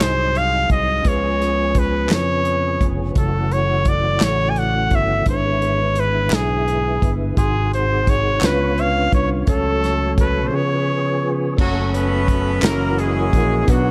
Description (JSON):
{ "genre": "slow gospel", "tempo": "57 BPM (dotted quarters)", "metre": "6/8", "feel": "straight", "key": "unclear", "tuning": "A4 = 439 Hz", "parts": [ { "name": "brilliant trumpet", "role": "melody", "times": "0.0-11.3 s", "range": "G#4 to G#5", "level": "-23 LUFS", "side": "equal", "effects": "none" }, { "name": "mellow tine electric piano", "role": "accompaniment", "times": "0.0-13.9 s", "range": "G#2 to B#5", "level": "-27 LUFS", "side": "equal", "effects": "none" }, { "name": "tonewheel organ", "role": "sustained chords", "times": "0.0-13.9 s", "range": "B#2 to C#5", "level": "-28 LUFS", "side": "equal", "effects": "slow rotary speaker, overdrive, chorus vibrato" }, { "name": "fingered electric bass", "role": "bass", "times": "0.0-13.9 s", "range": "E#1 to E#2", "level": "-24 LUFS", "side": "equal", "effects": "none" }, { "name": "warm soul drum kit", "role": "drums", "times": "0.0-13.8 s", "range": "crash cymbal, hi-hat, kick drum, snare drum", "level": "-22 LUFS", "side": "equal", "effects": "none" }, { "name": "group handclap", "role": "percussion", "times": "2.1-8.7, 12.6-13.0 s", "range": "none", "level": "-27 LUFS", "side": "equal", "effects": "none" }, { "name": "clear horn section", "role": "melody", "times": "11.6-13.9 s", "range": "F#3 to B4", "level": "-24 LUFS", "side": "equal", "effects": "none" } ], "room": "little or no reverb", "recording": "none", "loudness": "-18 LUFS", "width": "mono", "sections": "0.0-11.6 A section; 11.6-13.9 B section", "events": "none", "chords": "0.0 G#7; 1.1 C#7; 3.2 F#m7; 5.3 E7/G#; 7.4 G#7; 8.4 C#7b9; 9.5 F#m/C#; 10.5 C#7; 11.6 F#m; 12.6 F#7" }